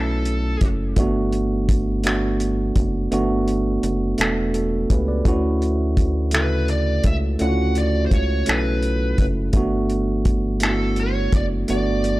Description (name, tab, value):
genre	slow six-eight R&B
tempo	56 BPM (dotted quarters)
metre	6/8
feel	straight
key	unclear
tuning	A4 = 441 Hz
part	smooth overdriven lead guitar	melody	0.0-0.7, 6.4-12.2 s	A4 to F#5	-27 LUFS	right 1 dB	none
part	tine electric piano	accompaniment	0.0-12.2 s	C#3 to D5	-22 LUFS	right 1 dB	none
part	rubbery square bass	bass	0.0-12.2 s	E1 to D2	-23 LUFS	equal	none
part	cloth-damped thuddy drum kit	drums	0.3-12.2 s	finger snaps, hi-hat, kick drum	-21 LUFS	equal	none
room	small room ambience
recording	dry, gritty hardware recording, transformer saturation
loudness	-18 LUFS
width	side -18 dB against mid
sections	0.0-12.2 A section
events	none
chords	0.0 Dmaj9; 1.0 Gmaj9; 5.3 Dmaj9; 9.5 Gmaj9